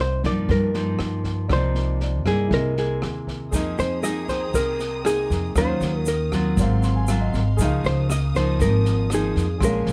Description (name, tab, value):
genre	bossa nova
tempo	118 BPM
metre	4/4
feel	straight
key	C minor, F minor from 3.5 s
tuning	A4 = 440 Hz
part	hollow-body jazz guitar	melody	0.0-9.9 s	Ab4 to Eb5	-28 LUFS	equal	none
part	nylon-string guitar	accompaniment	0.0-9.9 s	G2 to Ab4	-28 LUFS	equal	none
part	warm baby grand piano	accompaniment	0.0-9.9 s	Db4 to C6	-36 LUFS	equal	none
part	upright bass	bass	0.0-9.9 s	Ab1 to G2	-26 LUFS	equal	none
part	open jazz drum kit	drums	0.2-9.9 s	kick drum, rim click, snare drum	-32 LUFS	equal	none
part	dark studio string section	sustained chords	3.5-9.9 s	Ab4 to Eb6	-40 LUFS	equal	none
part	tube shaker	percussion	3.5-9.9 s	none	-40 LUFS	equal	none
room	little or no reverb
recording	close, detailed microphones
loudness	-22 LUFS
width	mono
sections	0.0-3.5 A section; 3.5-9.9 B section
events	grand piano fill 6.6-7.6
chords	0.0 Cm11; 2.5 C7alt; 3.5 Fm11; 5.6 Ebm9; 6.6 Ab13; 7.6 Db69